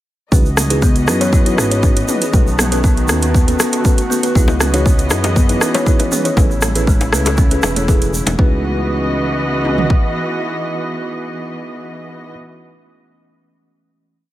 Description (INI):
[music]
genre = afro house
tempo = 119 BPM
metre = 4/4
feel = straight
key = C# minor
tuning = A4 = 440 Hz
[part]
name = muted studio string section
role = sustained chords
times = 0.3-12.3 s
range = C#3 to D#5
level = -22 LUFS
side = right 1 dB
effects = sidechain pumping
[part]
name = kalimba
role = arpeggios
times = 0.3-8.6 s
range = E3 to C#5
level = -21 LUFS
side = left 1 dB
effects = sidechain pumping, digital delay
[part]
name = mellow tine electric piano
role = stabs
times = 0.3-12.3 s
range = C#4 to C#5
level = -24 LUFS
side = equal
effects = medium stereo tremolo, sidechain pumping, digital delay
[part]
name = smooth synth bass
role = bass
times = 0.3-9.9 s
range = E1 to F#2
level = -19 LUFS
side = equal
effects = sidechain pumping
[part]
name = house drum kit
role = drums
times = 0.3-10.0 s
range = kick drum, toms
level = -13 LUFS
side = equal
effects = none
[part]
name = house drum kit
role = drums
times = 0.3-8.4 s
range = hi-hat, rim click, toms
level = -21 LUFS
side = right 1 dB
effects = none
[part]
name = tube shaker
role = percussion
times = 0.3-8.4 s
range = none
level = -26 LUFS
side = right 3 dB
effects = none
[part]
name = bongos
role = percussion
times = 4.5-8.4 s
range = none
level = -24 LUFS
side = left 4 dB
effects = none
[sound]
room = light reverb, studio ambience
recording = none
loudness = -12 LUFS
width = side -14 dB against mid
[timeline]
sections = 0.3-8.4 drop; 8.4-12.4 final chord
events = drop 0.3-8.4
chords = 0.3 C#m11; 2.3 B7; 4.4 C#m11; 6.4 Amaj7; 8.4 C#m11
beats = | 0.32 0.82 1.33 1.83 | 2.34 2.84 3.35 3.85 | 4.35 4.86 5.36 5.87 | 6.37 6.88 7.38 7.88 | 8.39 8.89 9.40 9.90 | 10.40 10.91 11.41 11.92